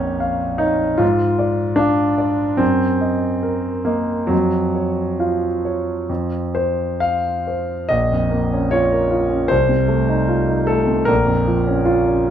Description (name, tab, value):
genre	classical, romantic character piece for solo piano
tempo	62-77 BPM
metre	4/4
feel	rubato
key	Bb minor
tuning	A4 = 440 Hz
part	clear concert grand piano	solo	0.0-12.3 s	Bb1 to F5	-16 LUFS	equal	none
room	moderate large studio reverb, RT60 1.2 s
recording	dark, warm production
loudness	-16 LUFS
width	side -9 dB against mid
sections	0.0-7.9 A section; 7.9-12.3 B section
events	none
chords	0.0 Bbm; 1.0 Ddim/Ab; 2.6 Ebm/Gb; 4.3 Dbadd11/F; 6.1 F5; 7.9 Bbm; 9.5 F7/C; 11.1 Bbm